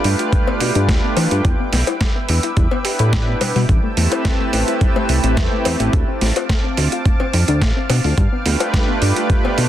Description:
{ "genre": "nu-disco, nu disco", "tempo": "107 BPM", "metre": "4/4", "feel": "straight", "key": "A minor", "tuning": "A4 = 442 Hz", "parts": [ { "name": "warm analog pad", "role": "accompaniment", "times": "0.0-9.7 s", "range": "A3 to E5", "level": "-22 LUFS", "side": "right 2 dB", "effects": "chorus, sidechain pumping, analog delay" }, { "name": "lush unison pad", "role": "sustained chords", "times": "0.0-9.7 s", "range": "C4 to E6", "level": "-26 LUFS", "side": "equal", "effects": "chorus, sidechain pumping" }, { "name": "soft round pluck", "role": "arpeggios", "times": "0.0-9.6 s", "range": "G3 to B4", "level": "-26 LUFS", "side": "left 5 dB", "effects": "chorus, sidechain pumping, tape echo" }, { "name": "chorused synth bass", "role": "bass", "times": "0.0-9.7 s", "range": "A1 to E3", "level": "-17 LUFS", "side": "equal", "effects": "tube saturation" }, { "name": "dusty soul sampler-style drum kit", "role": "drums", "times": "0.0-9.7 s", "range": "hi-hat, snare drum", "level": "-23 LUFS", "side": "right 3 dB", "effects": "overdrive" }, { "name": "electronic kick drum", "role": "drums", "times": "0.3-9.4 s", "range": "none", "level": "-18 LUFS", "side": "equal", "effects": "overdrive" }, { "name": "cowbell", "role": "percussion", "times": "0.5-9.6 s", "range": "none", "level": "-25 LUFS", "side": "left 6 dB", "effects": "none" } ], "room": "little or no reverb", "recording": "dense, heavily limited modern master", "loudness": "-15 LUFS", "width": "side -12 dB against mid", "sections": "0.0-9.7 A section", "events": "none", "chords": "0.0 G7; 1.4 Em7; 3.7 Am7; 5.9 Dm7; 8.2 G7" }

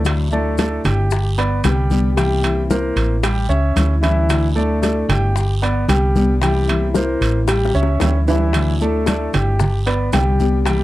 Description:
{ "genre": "latin, Cuban son and guajira", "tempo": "113 BPM", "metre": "4/4", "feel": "straight", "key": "D major", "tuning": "A4 = 442 Hz", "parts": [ { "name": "fingerpicked steel-string acoustic guitar", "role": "accompaniment", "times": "0.0-10.8 s", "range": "C3 to G4", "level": "-23 LUFS", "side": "left 3 dB", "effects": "none" }, { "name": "woody fretless electric bass", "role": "bass", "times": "0.0-10.8 s", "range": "G1 to D2", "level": "-18 LUFS", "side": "equal", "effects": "none" }, { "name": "maracas", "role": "percussion", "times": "0.0-10.8 s", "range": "none", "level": "-37 LUFS", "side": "left 7 dB", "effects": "none" }, { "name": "bongos", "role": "percussion", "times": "0.1-10.8 s", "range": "none", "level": "-28 LUFS", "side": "left 7 dB", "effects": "none" }, { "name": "congas", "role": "percussion", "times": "0.1-10.8 s", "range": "none", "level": "-23 LUFS", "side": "left 1 dB", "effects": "none" }, { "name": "guiro", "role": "percussion", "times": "0.1-10.8 s", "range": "none", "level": "-36 LUFS", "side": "right 6 dB", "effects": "none" }, { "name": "timbales", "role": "percussion", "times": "0.1-10.8 s", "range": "none", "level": "-26 LUFS", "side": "right 5 dB", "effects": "none" }, { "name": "warm concert grand piano", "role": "arpeggios", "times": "0.3-10.8 s", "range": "E3 to G5", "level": "-20 LUFS", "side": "equal", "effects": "none" } ], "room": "moderate studio ambience, RT60 0.5 s", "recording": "dark, warm production", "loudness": "-15 LUFS", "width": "side -16 dB against mid", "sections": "0.1-10.8 A section", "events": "drum fill 7.5-8.5", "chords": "0.1 Dadd9; 1.1 G; 2.2 C7; 3.2 A7; 4.3 Dadd9; 5.4 G; 6.4 C7; 7.5 A7; 8.5 Dadd9; 9.6 G" }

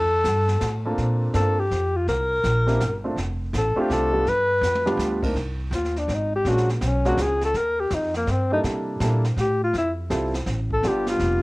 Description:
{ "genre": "jazz, small-group swing and bop", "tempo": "164 BPM", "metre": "3/4", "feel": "swing 65% on 8ths", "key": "unclear", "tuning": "A4 = 439 Hz", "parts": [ { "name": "breathy alto saxophone", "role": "melody", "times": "0.0-11.4 s", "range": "Bb3 to B4", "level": "-22 LUFS", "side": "left 1 dB", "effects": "cassette tape" }, { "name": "upright bass", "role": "bass", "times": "0.0-11.4 s", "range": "F1 to C3", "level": "-25 LUFS", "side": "equal", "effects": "none" }, { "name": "jazz brush drum kit", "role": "drums", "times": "0.2-11.4 s", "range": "brushed snare drum, crash cymbal, hi-hat, kick drum, snare drum, toms", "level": "-33 LUFS", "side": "right 1 dB", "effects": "cassette tape" }, { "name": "warm grand piano", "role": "accompaniment", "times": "0.9-11.4 s", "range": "G3 to Bb4", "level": "-26 LUFS", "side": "right 1 dB", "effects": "cassette tape" } ], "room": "light reverb", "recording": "home recording on cassette", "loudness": "-20 LUFS", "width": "side -22 dB against mid", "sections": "0.0-5.4 A section; 5.4-11.4 B section", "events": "drum fill 4.6-5.0; alto saxophone solo 5.4-11.4", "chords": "0.0 F; 2.1 C7(no3); 3.2 F6; 4.3 G7; 5.4 Cm; 6.5 Bb7alt; 7.5 Ebadd9; 8.6 C13; 9.7 Fmaj9; 10.8 G7" }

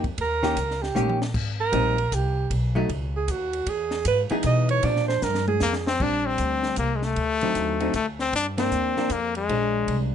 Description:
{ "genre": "jazz, small-group swing and bop", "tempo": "155 BPM", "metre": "3/4", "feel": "swing 64% on 8ths", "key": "Bb major from 6.0 s", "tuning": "A4 = 440 Hz", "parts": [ { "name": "hollow-body jazz guitar", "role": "accompaniment", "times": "0.0-10.1 s", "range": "D3 to G#4", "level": "-28 LUFS", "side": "left 1 dB", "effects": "none" }, { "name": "upright bass", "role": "bass", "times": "0.0-10.1 s", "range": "Ab1 to B2", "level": "-27 LUFS", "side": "equal", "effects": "none" }, { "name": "compact cocktail drum kit", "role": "drums", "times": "0.0-10.0 s", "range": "crash cymbal, hi-hat, kick drum, ride cymbal, snare drum, toms", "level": "-33 LUFS", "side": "left 1 dB", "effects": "none" }, { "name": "breathy alto saxophone", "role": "second line", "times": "0.2-5.9 s", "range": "F#4 to D#5", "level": "-25 LUFS", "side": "right 5 dB", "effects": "none" }, { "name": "clear trumpet", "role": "melody", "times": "5.6-10.0 s", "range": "Ab3 to D4", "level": "-24 LUFS", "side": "left 5 dB", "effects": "plate reverb" } ], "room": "light reverb", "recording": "nothing above 10.6 kHz", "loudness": "-22 LUFS", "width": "side -8 dB against mid", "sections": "0.0-6.0 A section; 6.0-10.1 B section", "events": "alto saxophone solo 0.0-6.0; drum fill 1.0-1.3, 5.2-6.0; band accent 8.5", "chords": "0.2 Eb7; 1.3 Abmaj7; 2.5 B; 3.7 Emaj7; 4.8 Bb7; 6.0 Bb69; 7.2 D7b9; 8.3 Gm7; 9.5 Bb7" }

